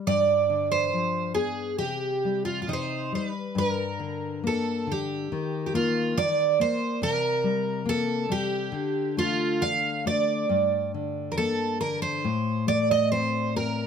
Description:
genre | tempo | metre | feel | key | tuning
fado-style ballad | 69 BPM | 2/4 | rubato | C harmonic minor, G minor from 3.6 s | A4 = 442 Hz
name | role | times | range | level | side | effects
nylon-string guitar | accompaniment | 0.0-13.9 s | G2 to D4 | -29 LUFS | left 5 dB | none
picked twelve-string acoustic guitar | melody | 0.1-13.9 s | Eb4 to F5 | -25 LUFS | right 4 dB | none
room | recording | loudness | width
moderate studio reverb, RT60 0.5 s | none | -24 LUFS | side -7 dB against mid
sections
0.0-3.6 A section; 3.6-13.9 B section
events
none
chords
0.1 G7; 1.8 C5; 3.6 Gm; 5.3 Eb5; 7.0 C5; 8.7 D5; 10.5 Gm; 12.2 Am

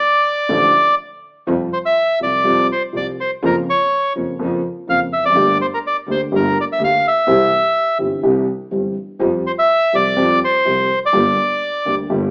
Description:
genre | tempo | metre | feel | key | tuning
tango | 124 BPM | 4/4 | rubato | F major | A4 = 440 Hz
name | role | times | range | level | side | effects
bandoneon | melody | 0.0-12.0 s | Bb4 to F5 | -14 LUFS | equal | none
dark concert grand piano | accompaniment | 0.5-12.3 s | G1 to G4 | -19 LUFS | equal | none
rich double bass | bass | 0.5-12.3 s | F1 to F2 | -24 LUFS | equal | none
room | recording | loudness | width
moderate large studio reverb, RT60 1.0 s | band playing live in one room, AM radio sound | -14 LUFS | side -32 dB against mid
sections
0.0-1.5 A section; 1.5-12.3 B section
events
none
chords
0.0 Dmadd9; 1.5 Fsus2; 3.4 Bbm/F; 5.4 Gmadd9; 7.3 C; 9.2 Fsus2; 11.1 Gm

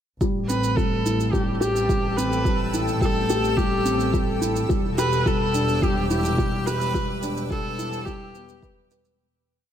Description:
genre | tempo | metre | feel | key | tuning
piano and strings electronica | 107 BPM | 4/4 | straight | unclear | A4 = 440 Hz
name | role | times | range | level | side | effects
granular cloud pad | sustained chords | 1.1-9.2 s | A4 to E6 | -33 LUFS | equal | built-in reverb, sidechain pumping
felt-muted upright piano | riff | 0.2-9.2 s | G3 to B4 | -26 LUFS | left 2 dB | digital delay
rich studio double bass section | bass | 0.2-9.2 s | E1 to A1 | -28 LUFS | equal | sidechain pumping
electronic kick drum | drums | 0.2-8.7 s | none | -26 LUFS | right 1 dB | none
shaker | drums | 0.2-9.2 s | none | -36 LUFS | right 8 dB | none
clear viola | melody | 0.5-8.9 s | G4 to B4 | -26 LUFS | right 1 dB | digital delay
room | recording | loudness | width
light reverb, small room reverb | none | -20 LUFS | side -9 dB against mid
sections
0.2-9.2 build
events
build-up 0.2-9.2; fade-out 6.2-9.2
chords
0.2 Am7; 4.7 Em7

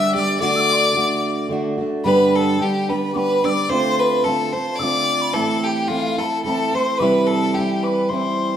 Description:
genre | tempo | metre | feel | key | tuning
celtic folk, Celtic waltz | 109 BPM | 3/4 | swing 53% on 8ths | G mixolydian | A4 = 440 Hz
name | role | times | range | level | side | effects
clear fiddle | melody | 0.0-8.6 s | F4 to E5 | -20 LUFS | equal | none
mellow hollow wooden whistle | second line | 0.0-8.6 s | F5 to E6 | -25 LUFS | left 6 dB | none
fingerpicked plugged-in steel-string acoustic guitar | accompaniment | 0.0-8.6 s | G2 to G4 | -21 LUFS | right 2 dB | none
room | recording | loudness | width
wet stone room reverb, RT60 1.4 s | band playing live in one room | -17 LUFS | side -9 dB against mid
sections
0.0-2.0 A section; 2.0-8.6 B section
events
none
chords
0.4 D; 2.0 G; 3.7 Dm7; 5.3 Am; 7.0 C

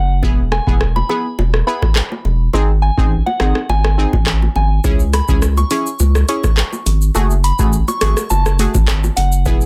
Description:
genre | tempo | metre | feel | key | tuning
dancehall | 104 BPM | 4/4 | straight | unclear | A4 = 440 Hz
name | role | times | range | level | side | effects
soft synth bell | melody | 0.0-9.3 s | F#5 to C#6 | -25 LUFS | equal | chorus, digital delay
saturated sub bass | bass | 0.0-9.7 s | E1 to C#2 | -17 LUFS | equal | none
synth brass stab | accompaniment | 0.2-9.6 s | A3 to G#4 | -23 LUFS | equal | chorus, phaser
booming analog drum machine | drums | 0.2-9.7 s | handclaps, hi-hat, kick drum, rim click, shaker | -19 LUFS | equal | none
bongos | percussion | 0.2-9.6 s | none | -29 LUFS | equal | none
room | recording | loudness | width
little or no reverb | dense, heavily limited modern master | -15 LUFS | mono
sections
0.0-9.7 A section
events
break 0.0-4.8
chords
0.2 E; 2.5 G#; 4.8 C#m; 7.2 F#madd9

